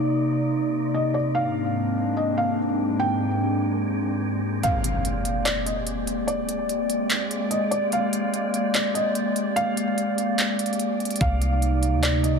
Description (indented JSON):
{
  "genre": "hip hop, atmospheric cloud-rap",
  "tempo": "146 BPM",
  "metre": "4/4",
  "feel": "half-time",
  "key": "unclear",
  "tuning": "A4 = 440 Hz",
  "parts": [
    { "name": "felt-muted upright piano", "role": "melody", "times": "0.0-12.4 s", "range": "D5 to G5", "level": "-28 LUFS", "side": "equal", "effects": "low-pass filter, ping-pong delay" },
    { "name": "warbly tape-like pad", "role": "sustained chords", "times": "0.0-12.4 s", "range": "Ab2 to D5", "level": "-24 LUFS", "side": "equal", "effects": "chorus, built-in reverb, sidechain pumping, low-pass filter" },
    { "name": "wind-like tuned noise texture", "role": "texture", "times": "0.0-12.4 s", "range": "Bb3 to D5", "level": "-35 LUFS", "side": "equal", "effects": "built-in reverb" },
    { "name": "trap drum kit", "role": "drums", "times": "4.6-12.3 s", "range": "handclaps, hi-hat, kick drum", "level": "-27 LUFS", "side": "right 1 dB", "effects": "overdrive" },
    { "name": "impact", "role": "sound effects", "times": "4.6-6.3 s", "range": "none", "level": "-29 LUFS", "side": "equal", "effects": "none" },
    { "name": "clean 808-style bass", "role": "bass", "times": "11.2-12.4 s", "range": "C2 to D2", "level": "-22 LUFS", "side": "equal", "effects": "none" }
  ],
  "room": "light reverb",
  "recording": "none",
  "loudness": "-22 LUFS",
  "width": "side -5 dB against mid",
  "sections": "0.0-4.6 A section; 4.6-12.4 B section",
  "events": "kick muted 4.6-11.2; impact 4.6-6.3",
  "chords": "0.0 Cm9; 1.3 Abmaj9#11; 11.2 Cm9",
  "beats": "0.11 0.53 0.94 | 1.35 1.76 2.17 2.58 | 2.99 3.40 3.81 4.22 | 4.63 5.04 5.46 5.87 | 6.28 6.69 7.10 7.51 | 7.92 8.33 8.74 9.15 | 9.57 9.98 10.39 10.80 | 11.21 11.62 12.03"
}